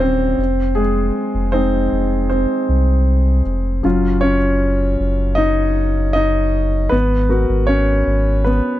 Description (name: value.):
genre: pop ballad.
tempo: 78 BPM.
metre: 4/4.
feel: straight.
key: Eb minor.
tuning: A4 = 440 Hz.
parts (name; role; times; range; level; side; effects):
clear grand piano; accompaniment; 0.0-8.8 s; Gb3 to Eb5; -17 LUFS; left 1 dB; none.
warm sub bass; bass; 0.0-8.6 s; Eb1 to C2; -18 LUFS; equal; none.
room: little or no reverb.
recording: dry, close 1970s-style studio recording.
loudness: -14 LUFS.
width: side -14 dB against mid.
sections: 0.0-8.8 A section.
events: grand piano solo 0.0-8.8.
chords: 0.4 Fm7; 3.8 Ebm7/Gb; 6.9 Abm7.